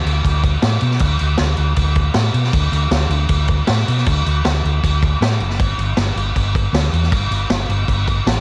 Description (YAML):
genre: indie rock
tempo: 157 BPM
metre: 4/4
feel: straight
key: D major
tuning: A4 = 440 Hz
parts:
  - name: hollow-body short-scale fingered electric bass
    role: bass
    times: 0.1-8.4 s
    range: F#1 to B2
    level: -20 LUFS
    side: equal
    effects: none
  - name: vintage drum kit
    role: drums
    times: 0.1-8.4 s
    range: crash cymbal, kick drum, snare drum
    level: -21 LUFS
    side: equal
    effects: cassette tape
room: little or no reverb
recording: home recording on cassette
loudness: -17 LUFS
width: mono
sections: 0.0-8.4 A section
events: none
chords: none